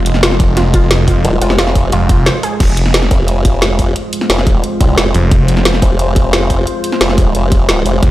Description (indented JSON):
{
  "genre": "dark technical drum and bass",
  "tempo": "177 BPM",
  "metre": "4/4",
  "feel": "straight",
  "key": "F minor",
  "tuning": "A4 = 440 Hz",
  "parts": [
    { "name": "deep dark ambient pad", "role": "sustained chords", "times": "0.0-8.1 s", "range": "Ab3 to Eb5", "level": "-19 LUFS", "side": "right 1 dB", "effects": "chorus, built-in reverb, vintage 12-bit sampler grit, sidechain pumping" },
    { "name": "snarling distorted saw bass", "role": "bass", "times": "0.0-3.1, 5.1-5.8, 8.0-8.1 s", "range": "F1", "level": "-13 LUFS", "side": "equal", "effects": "overdrive, sidechain pumping" },
    { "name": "drum and bass drum kit", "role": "drums", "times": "0.1-8.1 s", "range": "crash cymbal, hi-hat, snare drum", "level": "-16 LUFS", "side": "equal", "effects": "none" },
    { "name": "warbly dusty pluck", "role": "arpeggios", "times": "0.2-2.5 s", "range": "F4 to C5", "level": "-21 LUFS", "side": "right 1 dB", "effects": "chorus, cassette tape, sidechain pumping, dub echo" },
    { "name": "electronic kick drum", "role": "drums", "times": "0.4-8.1 s", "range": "none", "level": "-11 LUFS", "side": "equal", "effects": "none" },
    { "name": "formant-sweep wobble bass", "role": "bass", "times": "1.2-8.0 s", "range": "Eb1 to C2", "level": "-14 LUFS", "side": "equal", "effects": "chorus" }
  ],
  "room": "digital ambience",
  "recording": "played on a big sound system in a bare room, stone room reverb",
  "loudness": "-10 LUFS",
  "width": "side -15 dB against mid",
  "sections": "0.0-2.6 A section; 2.6-8.1 A section",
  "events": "drop 0.0-2.6, 2.6-8.1; break 2.3-2.6",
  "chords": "0.0 Fm"
}